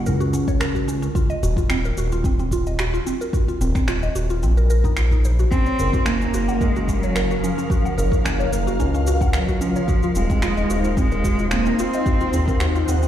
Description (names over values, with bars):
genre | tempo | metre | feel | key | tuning
organic downtempo | 110 BPM | 4/4 | swing 53% on 16ths | Eb dorian | A4 = 440 Hz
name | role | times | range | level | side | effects
mallet-like synth pluck | arpeggios | 0.0-13.1 s | C4 to Gb5 | -26 LUFS | equal | chorus, phaser, ping-pong delay
smooth synth bass | bass | 0.0-13.1 s | Eb1 to Db2 | -21 LUFS | equal | sidechain pumping
electronic shaker and finger snaps | drums | 0.1-13.1 s | none | -31 LUFS | right 1 dB | none
electronic kick drum | drums | 0.5-12.6 s | none | -21 LUFS | equal | none
rich cello | melody | 5.5-12.9 s | F3 to C4 | -24 LUFS | right 1 dB | ping-pong delay
ethereal airy pad | sustained chords | 5.7-13.1 s | Db3 to Gb5 | -27 LUFS | left 1 dB | ensemble chorus, built-in reverb, sidechain pumping
room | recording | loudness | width
light reverb | played on a big sound system in a bare room, large studio reverb | -18 LUFS | side -11 dB against mid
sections
0.0-13.1 A section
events
none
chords
0.0 Gb; 1.2 Ebm69; 5.5 Gbmaj7; 9.9 Ebm69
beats
0.07 0.61 | 1.16 1.70 2.25 2.79 | 3.34 3.88 4.43 4.97 | 5.52 6.07 6.61 7.16 | 7.70 8.25 8.79 9.34 | 9.88 10.43 10.97 11.52 | 12.06 12.61